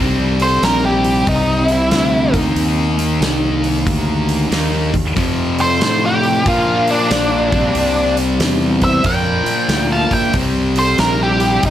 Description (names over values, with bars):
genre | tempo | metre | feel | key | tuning
blues rock power trio and southern rock | 93 BPM | 4/4 | swing 65% on 8ths | unclear | A4 = 438 Hz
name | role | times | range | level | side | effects
thick fuzz guitar | riff | 0.0-11.7 s | F2 to Eb4 | -18 LUFS | left 1 dB | distortion
fuzz fingered electric bass | bass | 0.0-11.7 s | Bb1 to Bb2 | -20 LUFS | equal | overdrive
octave-fuzz lead guitar | melody | 0.4-11.7 s | D4 to A5 | -17 LUFS | equal | distortion, plate reverb
lead guitar through a small cranked amp | second line | 0.4-11.7 s | Bb3 to F5 | -26 LUFS | right 2 dB | overdrive, plate reverb
big rock drum kit | drums | 0.4-11.7 s | hi-hat, kick drum, snare drum | -21 LUFS | equal | none
room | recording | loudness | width
moderate large studio reverb, RT60 0.8 s, small room ambience | none | -13 LUFS | side -11 dB against mid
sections
0.0-11.7 A section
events
none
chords
0.0 C5; 2.2 Eb5; 5.2 F; 6.5 Bb; 7.4 C; 9.1 Bb; 10.3 C5